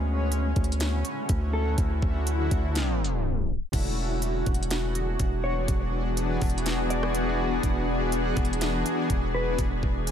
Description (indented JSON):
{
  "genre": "hip hop, atmospheric cloud-rap",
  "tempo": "123 BPM",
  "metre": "4/4",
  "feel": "half-time",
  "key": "unclear",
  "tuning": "A4 = 440 Hz",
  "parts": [
    { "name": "granular cloud pad", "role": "sustained chords", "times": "0.0-10.1 s", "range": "D3 to G#4", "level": "-28 LUFS", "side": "left 1 dB", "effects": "built-in reverb, sidechain pumping" },
    { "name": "long sustained 808-style bass", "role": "bass", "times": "0.0-10.1 s", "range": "E1 to D2", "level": "-28 LUFS", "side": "equal", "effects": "none" },
    { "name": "trap drum kit", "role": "drums", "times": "0.3-10.1 s", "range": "crash cymbal, hi-hat, kick drum, rim click, snare drum", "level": "-29 LUFS", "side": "equal", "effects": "none" },
    { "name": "mellow electric guitar", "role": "melody", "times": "1.5-1.8, 5.4-9.6 s", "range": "A4 to D5", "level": "-34 LUFS", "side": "left 2 dB", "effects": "lush chorus, low-pass filter, digital delay" }
  ],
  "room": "light reverb",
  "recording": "tape stop",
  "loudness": "-24 LUFS",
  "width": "side -8 dB against mid",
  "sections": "0.0-3.7 A section; 3.7-10.1 B section",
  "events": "tape stop 2.8-3.7",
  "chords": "0.0 Dmaj7; 3.7 E7"
}